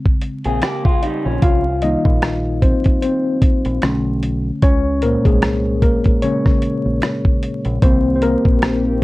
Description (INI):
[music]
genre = lo-fi hip hop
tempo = 75 BPM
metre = 4/4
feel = swing 57% on 16ths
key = Bb dorian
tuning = A4 = 440 Hz
[part]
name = mellow tine electric piano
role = accompaniment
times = 0.0-9.0 s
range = Bb2 to F5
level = -18 LUFS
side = left 1 dB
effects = medium stereo tremolo, cassette tape, low-pass filter, plate reverb
[part]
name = dusty soul sampler-style drum kit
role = drums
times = 0.1-8.8 s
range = hi-hat, kick drum, rim click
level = -15 LUFS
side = equal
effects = none
[part]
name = electric guitar through a small old amp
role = second line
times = 0.5-1.6 s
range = F3 to Ab4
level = -23 LUFS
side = equal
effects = low-pass filter, tape echo, plate reverb
[part]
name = deep dub fingered electric bass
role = bass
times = 0.5-9.0 s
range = Bb1 to Db2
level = -21 LUFS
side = equal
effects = none
[part]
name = finger snap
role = percussion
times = 0.6-8.8 s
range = none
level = -35 LUFS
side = right 4 dB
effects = none
[part]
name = warbly tape-like pad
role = sustained chords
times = 8.1-9.0 s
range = Eb3 to G4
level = -26 LUFS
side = left 3 dB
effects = chorus, built-in reverb, phaser, low-pass filter, plate reverb
[sound]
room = light reverb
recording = vinyl crackle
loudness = -14 LUFS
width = side -19 dB against mid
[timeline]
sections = 0.0-9.0 A section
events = tine electric piano solo 0.0-9.0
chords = 0.0 Bbm7; 1.4 Cm7; 3.8 Bm7; 4.6 Bbm7; 7.8 Cm7